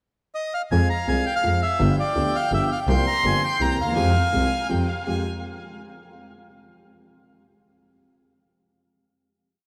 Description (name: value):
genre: tango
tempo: 166 BPM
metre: 3/4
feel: rubato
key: F minor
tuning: A4 = 442 Hz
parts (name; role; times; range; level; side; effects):
- bandoneon; melody; 0.3-4.7 s; D5 to Bb5; -28 LUFS; equal; delay
- warm violin; second line; 0.7-5.2 s; F5 to C6; -30 LUFS; equal; none
- warm concert grand piano; accompaniment; 0.7-5.2 s; G1 to Ab4; -29 LUFS; equal; none
- clear double bass; bass; 0.7-5.2 s; G1 to F2; -26 LUFS; equal; none
room: moderate huge ambient reverb, RT60 4.4 s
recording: dreamy mix soaked in reverb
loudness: -22 LUFS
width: mono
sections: 0.0-0.7 pickup bar; 0.7-5.1 A section; 5.1-6.2 final chord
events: none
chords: 0.0 N.C.; 0.7 Fm; 1.8 G7; 2.9 C7sus4; 3.6 C7; 4.0 Fmadd9